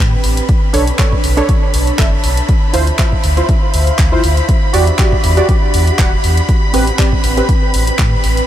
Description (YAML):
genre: deep house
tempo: 120 BPM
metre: 4/4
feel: swing 55% on 16ths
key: E minor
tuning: A4 = 440 Hz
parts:
  - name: sub bass with octave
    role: bass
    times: 0.0-8.4 s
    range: E1 to A2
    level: -14 LUFS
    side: equal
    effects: sidechain pumping
  - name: airy breathy pad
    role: texture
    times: 0.0-8.5 s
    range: C4 to A5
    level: -23 LUFS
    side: right 1 dB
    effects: chorus, sidechain pumping
  - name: soft string machine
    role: texture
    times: 0.0-8.5 s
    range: B5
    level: -24 LUFS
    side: equal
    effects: ensemble chorus, sidechain pumping
  - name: deep house drum kit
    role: drums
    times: 0.2-8.5 s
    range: handclaps, hi-hat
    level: -21 LUFS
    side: equal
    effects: none
  - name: electronic kick drum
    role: drums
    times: 0.5-8.1 s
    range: none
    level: -14 LUFS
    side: equal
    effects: none
  - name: warm analog keys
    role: stabs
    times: 0.7-7.5 s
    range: C4 to F#5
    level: -18 LUFS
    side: right 2 dB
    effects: chorus, sidechain pumping, tape echo
room: light reverb, digital ambience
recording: none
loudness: -10 LUFS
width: side -12 dB against mid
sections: 0.0-8.5 A section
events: none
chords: 0.5 Bm9; 2.5 Dm9; 4.5 Em9; 6.5 Am9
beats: | 0.49 0.99 1.49 1.99 | 2.49 2.99 3.49 3.99 | 4.49 4.99 5.49 5.99 | 6.49 6.99 7.49 7.99